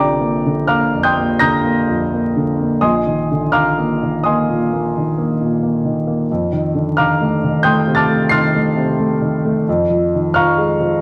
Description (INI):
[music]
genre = classical, impressionist solo piano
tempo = 81-91 BPM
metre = 5/4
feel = rubato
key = Bb major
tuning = A4 = 440 Hz
[part]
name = warm grand piano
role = solo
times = 0.0-11.0 s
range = Bb1 to C7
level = -16 LUFS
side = equal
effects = none
[sound]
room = moderate recital hall reverb, RT60 1.4 s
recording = vinyl crackle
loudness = -16 LUFS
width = mono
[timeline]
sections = 0.0-11.0 A section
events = none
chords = 0.0 Bb69; 2.8 Abadd9/Bb; 6.3 F9; 9.7 Db/F